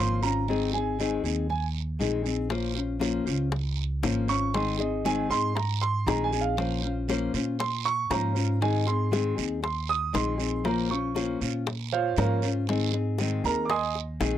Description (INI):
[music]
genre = latin, Cuban son and guajira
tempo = 118 BPM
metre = 4/4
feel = straight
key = unclear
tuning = A4 = 440 Hz
[part]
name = nylon-string guitar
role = accompaniment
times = 0.0-14.4 s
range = Eb3 to C5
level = -28 LUFS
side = left 5 dB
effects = none
[part]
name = warm concert grand piano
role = arpeggios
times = 0.0-13.9 s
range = F4 to Eb6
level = -29 LUFS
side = right 6 dB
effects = none
[part]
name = upright bass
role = bass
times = 0.0-14.4 s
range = Ab1 to Bb2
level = -30 LUFS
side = right 1 dB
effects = none
[part]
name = guiro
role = percussion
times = 0.2-14.4 s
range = none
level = -38 LUFS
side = right 23 dB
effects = none
[part]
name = bongos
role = percussion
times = 2.5-14.4 s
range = none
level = -31 LUFS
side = left 6 dB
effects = none
[sound]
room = little or no reverb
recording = dry, close 1970s-style studio recording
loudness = -25 LUFS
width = side -11 dB against mid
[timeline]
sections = 0.0-14.4 A section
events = grand piano solo 0.0-14.4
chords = 0.5 Ab; 2.5 Bbmadd9; 4.5 Ab; 6.6 Bbmadd9; 8.6 Ab; 10.7 Bbmadd9; 12.7 Ab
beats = | 0.48 0.98 1.49 2.00 | 2.51 3.02 3.53 4.04 | 4.54 5.05 5.56 6.07 | 6.58 7.09 7.60 8.11 | 8.62 9.12 9.63 10.14 | 10.65 11.16 11.67 12.18 | 12.69 13.19 13.70 14.21